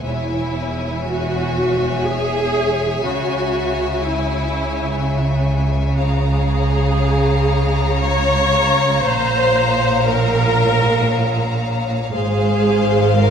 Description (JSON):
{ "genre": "classical, slow romantic movement for string orchestra", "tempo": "free time", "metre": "none", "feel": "none", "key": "C# minor", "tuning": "A4 = 438 Hz", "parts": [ { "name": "rich studio violin section", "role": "melody", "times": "0.0-13.3 s", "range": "F5 to Bb5", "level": "-27 LUFS", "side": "left 5 dB", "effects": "none" }, { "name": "rich studio violin section", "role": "second line", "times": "0.0-13.3 s", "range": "C5 to F5", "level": "-24 LUFS", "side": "left 5 dB", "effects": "none" }, { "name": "rich studio viola section", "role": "accompaniment", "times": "0.0-13.3 s", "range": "E4 to Db5", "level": "-20 LUFS", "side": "equal", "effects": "none" }, { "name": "rich studio cello section", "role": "bass", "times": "0.0-13.3 s", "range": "E2 to C#3", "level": "-21 LUFS", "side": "right 2 dB", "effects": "none" }, { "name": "rich studio double bass section", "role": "bass", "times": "0.0-13.3 s", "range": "E1 to C#2", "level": "-22 LUFS", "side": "right 2 dB", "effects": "none" } ], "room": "moderate concert hall reverb, RT60 2.5 s", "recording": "none", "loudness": "-15 LUFS", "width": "side -7 dB against mid", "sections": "0.0-13.3 A section", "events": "none", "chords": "0.0 C#m/E; 3.0 C#m; 6.0 Db6; 9.0 Bbm; 12.1 Fm/Ab" }